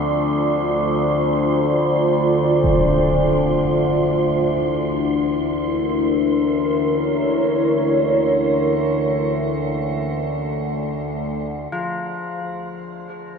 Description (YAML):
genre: dark ambient drone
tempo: free time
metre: none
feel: none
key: D minor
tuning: A4 = 440 Hz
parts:
  - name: dark analog pad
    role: sustained chords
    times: 0.0-11.7 s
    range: E4 to D5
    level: -20 LUFS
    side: right 1 dB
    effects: chorus, shimmer reverb
  - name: overtone-sweeping drone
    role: drone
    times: 0.0-13.4 s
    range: D2 to F3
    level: -21 LUFS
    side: left 1 dB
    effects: chorus, built-in reverb
  - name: wind-like tuned noise texture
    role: texture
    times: 0.0-13.4 s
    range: C5 to C6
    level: -34 LUFS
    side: right 2 dB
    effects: built-in reverb, shimmer reverb
  - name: impact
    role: percussion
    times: 2.6-2.8 s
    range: none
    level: -26 LUFS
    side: right 1 dB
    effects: low-pass filter on sfx
  - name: carillon bells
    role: arpeggios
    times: 11.7-13.4 s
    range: F4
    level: -27 LUFS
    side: left 2 dB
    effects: diffuse ambient delay, shimmer reverb
room: wet cathedral reverb, RT60 5.6 s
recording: none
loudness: -17 LUFS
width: side -6 dB against mid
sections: 0.0-11.7 A section; 11.7-13.4 B section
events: fade-out on synth texture 0.0-11.7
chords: 0.0 Dm; 4.5 Bbmadd9; 11.7 Dm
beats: free time